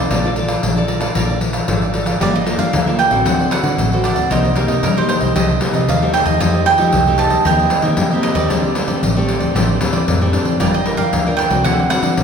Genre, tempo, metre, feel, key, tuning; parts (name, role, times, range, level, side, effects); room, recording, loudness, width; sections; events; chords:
samba and choro; 114 BPM; 4/4; straight; G minor; A4 = 440 Hz
cavaquinho; melody; 0.0-12.2 s; Bb4 to A5; -19 LUFS; right 4 dB
cavaquinho; accompaniment; 0.0-12.2 s; D4 to A5; -23 LUFS; right 4 dB
nylon-string guitar; accompaniment; 0.0-12.2 s; A2 to D5; -21 LUFS; left 2 dB
fingered electric bass; bass; 0.0-12.2 s; G1 to F3; -21 LUFS; right 1 dB
pandeiro; percussion; 0.1-12.2 s; -18 LUFS; left 3 dB
wet recital hall reverb, RT60 1.7 s; recorded in a church or concert hall; -13 LUFS; side -6 dB against mid
0.0-2.2 A section; 2.2-12.2 B section
0.1 Bbmaj7; 2.2 Gm9; 3.3 D7; 4.3 Cm7; 5.4 Am7b5/C; 6.4 F9; 7.5 Cm7/Eb; 8.5 D7sus4; 10.6 Gm7; 11.7 D7